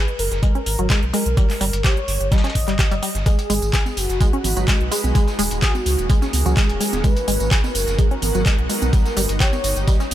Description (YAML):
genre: progressive house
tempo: 127 BPM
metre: 4/4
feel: straight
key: G# minor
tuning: A4 = 438 Hz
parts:
  - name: warm velvety synth lead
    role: melody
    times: 0.0-10.1 s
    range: F#4 to D#5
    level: -26 LUFS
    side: equal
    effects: chorus, vintage 12-bit sampler grit, sidechain pumping, ping-pong delay
  - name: tight sequenced synth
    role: arpeggios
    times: 0.0-10.0 s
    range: F#3 to G#4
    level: -26 LUFS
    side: equal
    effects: chorus, sidechain pumping, ping-pong delay
  - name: pop drum kit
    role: drums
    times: 0.1-10.1 s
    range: handclaps, hi-hat, tambourine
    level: -25 LUFS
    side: right 1 dB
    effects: none
  - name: round analog bass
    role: bass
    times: 0.2-10.1 s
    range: D#1 to C#2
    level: -22 LUFS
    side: equal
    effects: tube saturation, sidechain pumping
  - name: dusty soul sampler-style drum kit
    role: drums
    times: 0.2-10.1 s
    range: hi-hat, snare drum, tambourine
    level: -32 LUFS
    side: left 1 dB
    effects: overdrive, high-pass filter on snare, high-pass filter on perc, high-pass filter on hats, high-pass filter on room
  - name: electronic kick drum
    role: drums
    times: 0.4-10.0 s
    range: none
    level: -17 LUFS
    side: equal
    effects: none
  - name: shimmering ambient pad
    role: sustained chords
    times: 4.1-10.1 s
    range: D#3 to B4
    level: -30 LUFS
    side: right 1 dB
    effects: chorus, built-in reverb, sidechain pumping
  - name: congas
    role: percussion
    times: 3.9-10.1 s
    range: none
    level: -29 LUFS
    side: right 6 dB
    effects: sidechain pumping on perc
room: digital ambience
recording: none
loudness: -16 LUFS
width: side -12 dB against mid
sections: 0.0-10.1 A section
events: none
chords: 0.0 G#m7; 1.4 D#7/G; 3.3 G#m7; 5.2 D#m7; 7.0 G#m7; 8.9 D#7/G